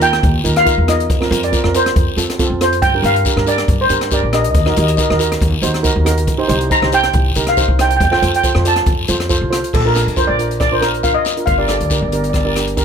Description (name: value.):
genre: calypso.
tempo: 139 BPM.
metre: 4/4.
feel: straight.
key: Bb major.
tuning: A4 = 441 Hz.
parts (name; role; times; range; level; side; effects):
steel pan; melody; 0.0-12.5 s; A4 to Bb5; -16 LUFS; equal; none.
steel pan; accompaniment; 0.0-12.8 s; C4 to D5; -20 LUFS; right 4 dB; none.
upright bass; bass; 0.0-12.8 s; G1 to G2; -18 LUFS; equal; none.
open jazz drum kit; drums; 0.0-12.8 s; crash cymbal, hi-hat, kick drum, rim click; -19 LUFS; left 1 dB; none.
guiro; percussion; 0.0-12.8 s; none; -25 LUFS; left 6 dB; none.
room: light reverb.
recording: close, detailed microphones.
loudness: -12 LUFS.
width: side -7 dB against mid.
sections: 0.0-9.7 A section; 9.7-12.8 B section.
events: none.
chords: 0.0 Ebsus2; 1.1 Fsus4; 2.0 F; 2.8 Gm; 4.5 Ebm; 6.3 Cm; 8.0 F; 9.7 Bb; 11.5 Gm.